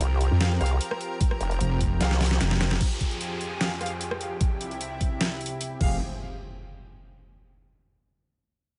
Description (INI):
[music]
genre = heavy wobble dubstep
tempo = 150 BPM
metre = 4/4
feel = half-time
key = F harmonic minor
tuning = A4 = 441 Hz
[part]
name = lush unison pad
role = sustained chords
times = 0.0-6.0 s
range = C2 to Bb4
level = -37 LUFS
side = equal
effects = chorus, sidechain pumping
[part]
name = vowel-sweep wobble bass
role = bass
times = 0.0-2.4 s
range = F1 to C2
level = -26 LUFS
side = equal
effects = chorus, overdrive
[part]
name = dubstep drum kit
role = drums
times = 0.0-5.9 s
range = crash cymbal, hi-hat, rim click, snare drum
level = -32 LUFS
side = equal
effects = overdrive, studio reverb
[part]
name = wobble bass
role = bass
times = 0.3-2.8, 5.8-6.0 s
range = F1 to F2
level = -26 LUFS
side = equal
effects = chorus, overdrive
[part]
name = bright brass ensemble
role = stabs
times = 0.4-6.0 s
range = G4 to F5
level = -38 LUFS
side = equal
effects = digital delay
[part]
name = electronic kick drum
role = drums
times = 1.2-5.9 s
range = none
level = -27 LUFS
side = equal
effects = overdrive, studio reverb
[part]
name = downlifter and impact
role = sound effects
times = 2.8-7.4 s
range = none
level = -41 LUFS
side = equal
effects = none
[sound]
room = little or no reverb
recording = nothing above 10.9 kHz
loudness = -26 LUFS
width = mono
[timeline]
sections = 0.0-2.8 A section; 2.8-6.0 B section; 6.0-7.6 C section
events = drop 0.0-2.8; drum fill 2.0-2.8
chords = 0.0 Fsus2; 2.8 Fmadd9; 4.4 C; 5.8 Fmadd9; 6.0 N.C.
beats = 0.01 0.41 0.81 | 1.21 1.61 2.01 2.41 | 2.81 3.21 3.61 4.01 | 4.41 4.81 5.21 5.61 | 6.01 6.41 6.81 7.21